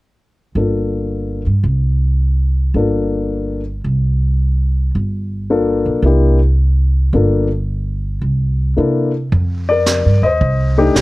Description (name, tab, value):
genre	jazz piano trio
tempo	110 BPM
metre	4/4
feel	swing 68% on 8ths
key	F mixolydian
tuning	A4 = 445 Hz
part	dark baby grand piano	melody	0.6-11.0 s	A3 to Eb5	-16 LUFS	left 3 dB	none
part	upright bass	bass	0.6-11.0 s	G1 to C3	-15 LUFS	right 1 dB	none
part	jazz brush drum kit	drums	9.3-11.0 s	brushed snare drum, hi-hat, kick drum, snare drum	-21 LUFS	right 3 dB	none
room	little or no reverb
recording	close, detailed microphones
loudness	-14 LUFS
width	side -20 dB against mid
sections	0.6-9.3 A section; 9.3-11.0 B section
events	none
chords	0.6 Gm7; 1.7 N.C.; 2.7 Gm7; 3.8 N.C.; 4.9 Gm7; 6.0 C9; 7.1 Gm7; 8.2 C9; 9.3 F7(no3)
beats	| 0.56 1.10 1.65 2.20 | 2.75 3.30 3.84 4.39 | 4.94 5.49 6.04 6.58 | 7.13 7.68 8.22 8.77 | 9.32 9.86 10.41 10.96